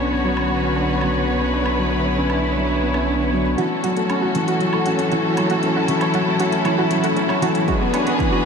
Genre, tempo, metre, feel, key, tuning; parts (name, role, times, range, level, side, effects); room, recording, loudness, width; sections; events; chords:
piano and strings electronica; 117 BPM; 4/4; straight; F# minor; A4 = 440 Hz
warm studio string section; sustained chords; 0.0-8.5 s; D3 to C#5; -22 LUFS; left 1 dB; sidechain pumping, shimmer reverb
felt-muted upright piano; riff; 0.0-8.5 s; E3 to D4; -20 LUFS; equal; ping-pong delay, shimmer reverb
round analog bass; bass; 0.0-8.5 s; F#1 to B1; -26 LUFS; right 1 dB; sidechain pumping, high-pass filter
electronic woodblock and hi-hat; drums; 0.4-8.3 s; -32 LUFS; right 2 dB; high-pass filter on perc, high-pass filter on hats, high-pass filter on room
analog pluck; arpeggios; 3.6-8.4 s; F#4 to C#5; -25 LUFS; right 3 dB; chorus, sidechain pumping, ping-pong delay, shimmer reverb
electronic kick drum; drums; 7.7-8.3 s; -24 LUFS; right 1 dB; overdrive
wet huge ambient reverb, RT60 7.3 s; dreamy mix soaked in reverb; -17 LUFS; side -6 dB against mid
0.0-3.6 A section; 3.6-8.5 B section
build-up 3.6-8.5
0.0 Bmadd9; 3.6 F#m7; 7.7 E7